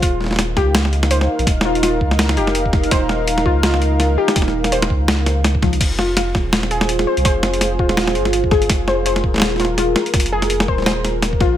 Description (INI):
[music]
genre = half-time drum and bass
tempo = 166 BPM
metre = 4/4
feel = swing 57% on 16ths, half-time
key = F minor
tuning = A4 = 443 Hz
[part]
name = dark analog pad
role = sustained chords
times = 0.0-11.6 s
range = Eb4 to F5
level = -22 LUFS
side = right 1 dB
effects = chorus, vintage 12-bit sampler grit, sidechain pumping
[part]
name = warbly dusty pluck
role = arpeggios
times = 0.0-11.6 s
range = F3 to C5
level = -22 LUFS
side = left 3 dB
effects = chorus, digital delay
[part]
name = saturated sub bass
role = bass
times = 0.0-11.6 s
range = Eb1 to Db2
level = -20 LUFS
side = equal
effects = tube saturation
[part]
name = boom bap sampler-style drum kit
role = drums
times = 0.0-11.5 s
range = crash cymbal, hi-hat, snare drum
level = -19 LUFS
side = equal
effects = small room reverb
[part]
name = electronic kick drum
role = drums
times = 0.0-11.5 s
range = none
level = -18 LUFS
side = equal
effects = small room reverb
[sound]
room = light reverb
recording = none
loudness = -14 LUFS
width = side -11 dB against mid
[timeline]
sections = 0.0-11.6 A section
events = none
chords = 0.0 Eb; 5.8 Fm